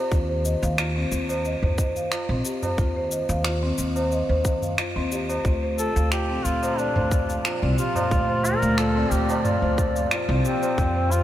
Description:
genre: organic downtempo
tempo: 90 BPM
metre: 4/4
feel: swing 53% on 16ths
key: unclear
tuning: A4 = 440 Hz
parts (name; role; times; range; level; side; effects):
- marimba with medium mallets; arpeggios; 0.0-11.2 s; C4 to F5; -26 LUFS; left 1 dB; low-pass filter, diffuse ambient delay
- upright bass; bass; 0.1-11.2 s; Bb1 to F2; -25 LUFS; equal; sidechain pumping
- afro-pop drum kit; drums; 0.1-11.2 s; cabasa, finger snaps, toms; -31 LUFS; equal; overdrive
- electronic kick drum; drums; 0.1-10.9 s; none; -24 LUFS; equal; none
- tabla; percussion; 0.8-10.8 s; none; -35 LUFS; right 2 dB; none
- warbly tape-like pad; sustained chords; 6.4-11.2 s; Bb2 to D5; -30 LUFS; left 1 dB; chorus, built-in reverb, phaser, sidechain pumping
- warm duduk; melody; 5.8-11.2 s; C4 to Bb4; -26 LUFS; equal; diffuse ambient delay
room: moderate huge ambient reverb, RT60 7.7 s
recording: dreamy mix soaked in reverb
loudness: -21 LUFS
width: side -12 dB against mid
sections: 0.0-11.2 A section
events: none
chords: 0.1 N.C.; 5.4 Bb

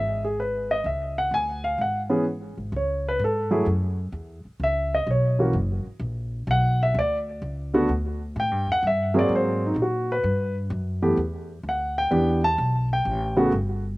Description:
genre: jazz piano trio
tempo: 128 BPM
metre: 4/4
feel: swing 68% on 8ths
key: unclear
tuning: A4 = 440 Hz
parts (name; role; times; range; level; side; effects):
- warm grand piano; melody; 0.0-13.5 s; C#3 to A5; -23 LUFS; equal; slapback echo
- upright bass; bass; 0.0-14.0 s; F#1 to A#2; -27 LUFS; equal; none
room: little or no reverb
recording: recorded outdoors, with no room sound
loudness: -22 LUFS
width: side -20 dB against mid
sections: 0.0-2.7 A section; 2.7-14.0 B section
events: none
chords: 0.0 C#m; 2.7 F#m9; 4.6 C#m7; 5.5 F#; 6.5 Bm; 8.4 A7(no3); 9.3 G#9; 10.2 G6; 12.1 Em7; 13.1 A7(no3)

